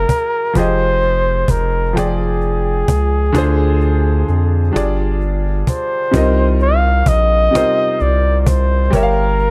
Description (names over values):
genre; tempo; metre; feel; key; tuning
slow six-eight R&B; 43 BPM (dotted quarters); 6/8; straight; C minor; A4 = 440 Hz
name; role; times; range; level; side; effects
breathy flugelhorn; melody; 0.0-9.5 s; Ab4 to F5; -20 LUFS; equal; none
clear concert grand piano; accompaniment; 0.0-9.5 s; C3 to G5; -22 LUFS; equal; none
round analog bass; bass; 0.0-9.5 s; F1 to F2; -18 LUFS; equal; none
cajon; drums; 0.1-9.5 s; none; -21 LUFS; equal; none
room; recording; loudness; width
studio ambience; dark, warm production; -15 LUFS; mono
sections
0.0-6.1 A section; 6.1-9.5 B section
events
none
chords
0.0 F#9; 0.6 Fm9; 3.3 Dm7b5; 4.7 G5; 6.1 Cm7; 8.9 Gm7b5